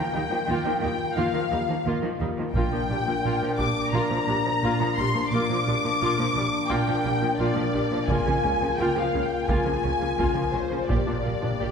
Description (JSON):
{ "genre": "cinematic, epic orchestral film score", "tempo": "87 BPM", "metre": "4/4", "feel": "straight", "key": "Bb major", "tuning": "A4 = 442 Hz", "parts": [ { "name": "dark symphonic violin section", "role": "melody", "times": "0.0-11.7 s", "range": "C5 to D6", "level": "-29 LUFS", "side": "left 2 dB", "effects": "none" }, { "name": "rich studio violin section", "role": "second line", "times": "0.0-11.7 s", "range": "C5 to D6", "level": "-31 LUFS", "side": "left 3 dB", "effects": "none" }, { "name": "warm symphonic viola section", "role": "accompaniment", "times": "0.0-11.7 s", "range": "F3 to G4", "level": "-30 LUFS", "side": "equal", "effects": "none" }, { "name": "mellow French horn section", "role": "sustained chords", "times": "0.0-11.7 s", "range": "Bb3 to G4", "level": "-30 LUFS", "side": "left 4 dB", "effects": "none" }, { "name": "clear studio cello section", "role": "bass", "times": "0.0-11.7 s", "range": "Bb2 to Eb3", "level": "-31 LUFS", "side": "right 3 dB", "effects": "none" }, { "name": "dark symphonic double bass section", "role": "bass", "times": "0.1-11.7 s", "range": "Bb1 to Eb2", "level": "-32 LUFS", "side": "right 2 dB", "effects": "none" }, { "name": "taiko ensemble", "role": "drums", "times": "2.5-3.9, 8.1-11.6 s", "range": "none", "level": "-30 LUFS", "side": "right 1 dB", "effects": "none" }, { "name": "timpani", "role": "percussion", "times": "2.5-3.5, 10.9-11.7 s", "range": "Bb2", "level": "-34 LUFS", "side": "left 1 dB", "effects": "none" } ], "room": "wet scoring stage reverb, RT60 1.7 s", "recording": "heard from further back in the room", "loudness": "-22 LUFS", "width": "side -6 dB against mid", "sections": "0.0-11.7 A section", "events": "timpani fill 10.9-11.7", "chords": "0.0 Ebadd9; 2.5 Bb6; 8.1 Db6; 10.9 Bb6" }